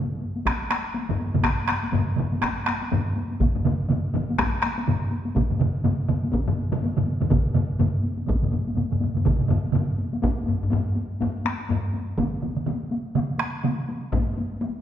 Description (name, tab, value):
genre	japanese traditional, taiko drum ensemble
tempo	123 BPM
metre	4/4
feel	swing 60% on 16ths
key	none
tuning	none
part	taiko ensemble	percussion	0.2-14.8 s	none	-29 LUFS	left 2 dB	none
part	taiko ensemble	percussion	0.5-14.3 s	none	-26 LUFS	left 2 dB	none
part	taiko ensemble	percussion	0.5-13.8 s	none	-26 LUFS	right 4 dB	none
part	taiko ensemble	percussion	0.5-14.3 s	none	-28 LUFS	equal	none
room	wet recital hall reverb, RT60 1.8 s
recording	recorded in a church or concert hall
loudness	-22 LUFS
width	side -10 dB against mid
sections	0.0-10.2 A section; 10.2-14.8 B section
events	none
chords	none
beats	| 0.46 0.95 1.44 1.93 | 2.42 2.91 3.40 3.89 | 4.38 4.87 5.36 5.85 | 6.33 6.82 7.31 7.80 | 8.29 8.77 9.26 9.75 | 10.23 10.72 11.21 11.70 | 12.18 12.67 13.15 13.64 | 14.12 14.61